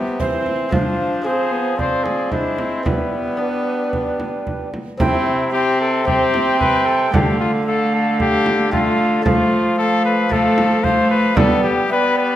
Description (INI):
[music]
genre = classical, renaissance-style consort dance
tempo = 113 BPM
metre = 4/4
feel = straight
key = C major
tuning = A4 = 440 Hz
[part]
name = warm cornet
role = melody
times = 0.0-12.4 s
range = D4 to C5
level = -21 LUFS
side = left 4 dB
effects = none
[part]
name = lute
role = accompaniment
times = 0.0-12.4 s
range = C3 to Ab4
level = -29 LUFS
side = equal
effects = none
[part]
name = warm viola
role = accompaniment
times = 0.0-12.4 s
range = A3 to D4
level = -21 LUFS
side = left 1 dB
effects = none
[part]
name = warm bassoon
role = bass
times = 0.0-12.4 s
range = C3 to Ab3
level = -23 LUFS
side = right 1 dB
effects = none
[part]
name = alto recorder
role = second line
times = 0.2-12.4 s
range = B4 to G5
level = -23 LUFS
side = right 4 dB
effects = none
[part]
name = frame drum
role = percussion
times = 0.2-11.6 s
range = none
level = -22 LUFS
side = right 2 dB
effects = none
[sound]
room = wet recital hall reverb, RT60 1.3 s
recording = none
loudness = -15 LUFS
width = side -12 dB against mid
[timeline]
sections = 0.0-5.0 A section; 5.0-12.4 B section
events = none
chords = 0.0 C; 0.7 Fm; 2.9 G; 5.0 C; 7.1 Dm; 9.3 F; 11.4 G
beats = 0.20 | 0.73 1.26 1.79 2.32 | 2.86 3.40 3.93 4.47 | 5.01 5.54 6.07 6.60 | 7.13 7.66 8.19 8.72 | 9.25 9.79 10.32 10.85 | 11.37 11.90